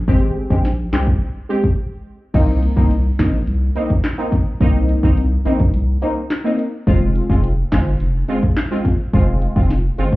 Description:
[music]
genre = dancehall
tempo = 106 BPM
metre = 4/4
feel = straight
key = unclear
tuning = A4 = 440 Hz
[part]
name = saturated sub bass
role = bass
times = 0.0-10.2 s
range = F1 to C2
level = -17 LUFS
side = equal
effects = none
[part]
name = synth brass stab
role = accompaniment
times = 0.1-10.2 s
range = Ab3 to G4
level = -21 LUFS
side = equal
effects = chorus, phaser
[part]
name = afro-pop drum kit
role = drums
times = 0.1-10.2 s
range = crash cymbal, handclaps, hi-hat, kick drum, snare drum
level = -17 LUFS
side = equal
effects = none
[sound]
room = digital ambience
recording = heard muffled through a wall, club reverb, EQ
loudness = -15 LUFS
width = side -19 dB against mid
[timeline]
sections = 0.0-2.3 A section; 2.3-10.2 B section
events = break 1.8-2.3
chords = 0.1 Abmaj7; 2.3 Cm7; 6.9 Fm

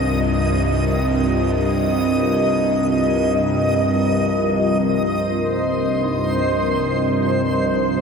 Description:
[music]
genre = dark ambient drone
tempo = free time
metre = none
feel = none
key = C minor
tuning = A4 = 441 Hz
[part]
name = deep dark ambient pad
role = sustained chords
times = 0.0-8.0 s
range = C4 to Eb5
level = -20 LUFS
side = right 1 dB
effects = chorus, built-in reverb
[part]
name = bowed-like drone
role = drone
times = 0.0-8.0 s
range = C2 to G2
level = -21 LUFS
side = left 1 dB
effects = built-in reverb
[part]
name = backwards swelling texture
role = texture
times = 0.0-8.0 s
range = C5 to Eb5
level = -24 LUFS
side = equal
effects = built-in reverb
[part]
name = dark detuned synth bell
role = arpeggios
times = 6.0-8.0 s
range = none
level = barely audible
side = none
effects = none
[sound]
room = wet cathedral reverb, RT60 5.2 s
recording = in a vast, echoing space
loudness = -17 LUFS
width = side -5 dB against mid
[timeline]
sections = 0.0-4.6 A section; 4.6-8.0 B section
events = none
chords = 0.0 Cm7

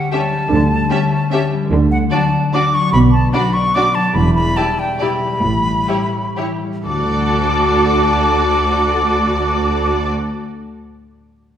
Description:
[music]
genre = classical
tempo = 120-161 BPM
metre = 3/4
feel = rubato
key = D major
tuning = A4 = 440 Hz
[part]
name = bright silver concert flute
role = second line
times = 0.0-10.1 s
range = F#5 to D6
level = -19 LUFS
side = equal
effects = none
[part]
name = concert harp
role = arpeggios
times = 0.0-10.8 s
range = E2 to F#5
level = -21 LUFS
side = left 4 dB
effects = none
[part]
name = clear symphonic violin section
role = melody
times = 0.1-10.1 s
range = C#5 to E5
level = -27 LUFS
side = left 2 dB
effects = none
[part]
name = rich symphonic violin section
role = second line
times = 0.1-10.1 s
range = F#4 to A4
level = -24 LUFS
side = left 1 dB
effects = none
[part]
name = rich symphonic viola section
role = accompaniment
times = 0.1-10.1 s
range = C#4 to F#4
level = -23 LUFS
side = right 1 dB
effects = none
[part]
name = rich symphonic cello section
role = bass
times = 0.5-10.1 s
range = D2 to D3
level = -20 LUFS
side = right 1 dB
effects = none
[part]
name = rich symphonic double bass section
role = bass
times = 0.5-10.1 s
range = E1 to D2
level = -20 LUFS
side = right 2 dB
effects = none
[sound]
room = wet recital hall reverb, RT60 1.7 s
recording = recorded in a church or concert hall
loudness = -13 LUFS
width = side -9 dB against mid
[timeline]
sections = 0.0-6.9 A section; 6.9-9.7 B section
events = slowing down 3.5-6.9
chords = 0.0 A7/D; 1.7 D; 2.9 Bm; 4.2 Em7; 5.4 A7; 6.9 D

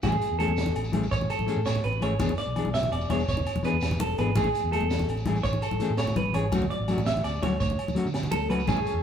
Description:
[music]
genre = highlife guitar band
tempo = 111 BPM (dotted quarters)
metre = 12/8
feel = straight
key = A major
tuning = A4 = 440 Hz
[part]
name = mellow electric guitar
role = accompaniment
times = 0.0-8.8 s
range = E3 to G#4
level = -30 LUFS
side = left 3 dB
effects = none
[part]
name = semi-hollow electric guitar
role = arpeggios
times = 0.0-9.0 s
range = G#4 to E5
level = -29 LUFS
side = right 2 dB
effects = none
[part]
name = fingered electric bass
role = bass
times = 0.0-9.0 s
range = E1 to D3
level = -30 LUFS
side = right 1 dB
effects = none
[part]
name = crunchy breakbeat drum kit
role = drums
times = 0.0-8.9 s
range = hi-hat, kick drum, snare drum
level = -35 LUFS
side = right 1 dB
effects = none
[part]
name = agogo bells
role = percussion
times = 0.0-8.9 s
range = none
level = -40 LUFS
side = left 1 dB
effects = none
[part]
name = congas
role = percussion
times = 0.0-8.9 s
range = none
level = -34 LUFS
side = left 3 dB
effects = none
[part]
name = shekere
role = percussion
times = 0.0-8.9 s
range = none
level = -38 LUFS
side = right 1 dB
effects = none
[part]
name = combo organ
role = sustained chords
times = 8.7-9.0 s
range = A3 to G#5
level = -38 LUFS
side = equal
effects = none
[sound]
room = wet stone room reverb, RT60 1.3 s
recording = band playing live in one room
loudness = -24 LUFS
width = side -8 dB against mid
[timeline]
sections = 0.0-9.0 A section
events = none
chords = 0.0 Amaj7; 2.2 E7; 4.4 Amaj7; 6.5 Dmaj7

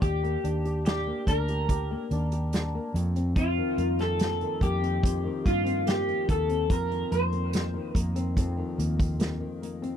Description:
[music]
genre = indie pop, bedroom pop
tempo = 72 BPM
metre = 4/4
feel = straight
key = unclear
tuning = A4 = 440 Hz
[part]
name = electric guitar through a small old amp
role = melody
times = 0.0-8.3 s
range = F4 to C5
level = -29 LUFS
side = equal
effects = lush chorus, tape echo
[part]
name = flamenco guitar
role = accompaniment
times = 0.0-10.0 s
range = F2 to G4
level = -33 LUFS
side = left 4 dB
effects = lush chorus, warbly pitch drift
[part]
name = vintage muted fingered electric bass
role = bass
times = 0.0-9.5 s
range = D2 to G2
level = -29 LUFS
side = right 1 dB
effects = none
[part]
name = unplugged drum kit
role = drums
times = 0.0-10.0 s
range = hi-hat, kick drum, snare drum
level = -27 LUFS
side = right 1 dB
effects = none
[sound]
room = little or no reverb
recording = dry, close 1970s-style studio recording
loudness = -25 LUFS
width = side -9 dB against mid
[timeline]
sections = 0.0-10.0 A section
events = none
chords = 0.0 Ebmaj7; 2.9 F7sus4

